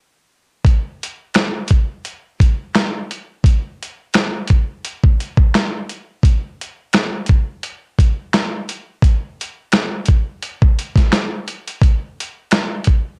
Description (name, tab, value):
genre	hip hop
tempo	86 BPM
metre	4/4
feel	swing 56% on 16ths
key	none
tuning	none
part	dusty soul sampler-style drum kit	drums	0.6-13.1 s	finger snaps, hi-hat, kick drum, snare drum	-16 LUFS	equal	cassette tape
room	light reverb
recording	home recording on cassette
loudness	-17 LUFS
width	mono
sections	0.7-13.2 A section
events	break 0.0-0.7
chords	none